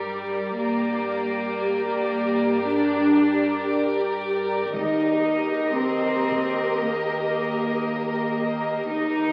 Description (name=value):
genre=cinematic, suspense film score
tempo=58 BPM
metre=4/4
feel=straight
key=unclear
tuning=A4 = 441 Hz
part: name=warm symphonic violin section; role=melody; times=0.0-9.3 s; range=D5 to D#5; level=-34 LUFS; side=equal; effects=none
part: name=warm symphonic violin section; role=second line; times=0.0-9.3 s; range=Bb4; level=-33 LUFS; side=equal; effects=none
part: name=dark symphonic viola section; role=accompaniment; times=0.0-9.3 s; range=G4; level=-31 LUFS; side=equal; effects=none
part: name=warbly tape-like pad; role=sustained chords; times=0.0-9.3 s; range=G4 to Bb5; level=-34 LUFS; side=equal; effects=chorus, built-in reverb
part: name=warm symphonic cello section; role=bass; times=0.0-9.3 s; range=G3 to D#4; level=-27 LUFS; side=equal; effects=none
part: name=warm symphonic double bass section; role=bass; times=0.0-9.3 s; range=D#2 to G2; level=-42 LUFS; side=equal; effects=none
part: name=taiko ensemble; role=drums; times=4.7-6.8 s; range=none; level=-41 LUFS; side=equal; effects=none
part: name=vibraphone with medium mallets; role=texture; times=4.8-9.3 s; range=D#5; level=-35 LUFS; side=equal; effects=none
room=moderate scoring stage reverb, RT60 1.6 s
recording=very old 78 rpm record, vinyl crackle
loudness=-24 LUFS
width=mono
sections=0.0-9.3 A section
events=none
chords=0.0 Gm; 4.7 D#